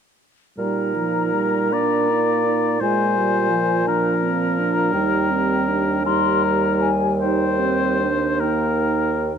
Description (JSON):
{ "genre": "classical, slow romantic movement for wind quintet", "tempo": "42-58 BPM (dotted quarters)", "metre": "6/8", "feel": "rubato", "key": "Eb major", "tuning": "A4 = 440 Hz", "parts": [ { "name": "mellow hollow silver concert flute", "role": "melody", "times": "0.6-9.3 s", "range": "G5 to C6", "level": "-25 LUFS", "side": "left 12 dB", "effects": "none" }, { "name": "warm oboe", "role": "second line", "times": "0.6-9.4 s", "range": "Bb4 to D5", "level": "-24 LUFS", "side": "left 4 dB", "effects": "none" }, { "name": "mellow French horn", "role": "accompaniment", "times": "0.6-9.3 s", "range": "F3 to Bb3", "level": "-24 LUFS", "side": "equal", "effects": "none" }, { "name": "mellow clarinet", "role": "accompaniment", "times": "0.6-9.4 s", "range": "C4 to F4", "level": "-25 LUFS", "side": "right 11 dB", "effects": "none" }, { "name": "mellow bassoon", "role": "bass", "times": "0.6-9.3 s", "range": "Eb2 to Bb2", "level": "-24 LUFS", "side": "right 3 dB", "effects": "none" } ], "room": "moderate recital hall reverb, RT60 1.7 s", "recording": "close, detailed microphones", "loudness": "-17 LUFS", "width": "side -7 dB against mid", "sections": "0.6-9.4 A section", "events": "none", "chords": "0.6 Eb/Bb; 2.8 Bb13; 4.9 Eb", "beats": "| 0.58 1.72 | 2.82 3.87 | 4.94 6.06 | 7.20 8.40" }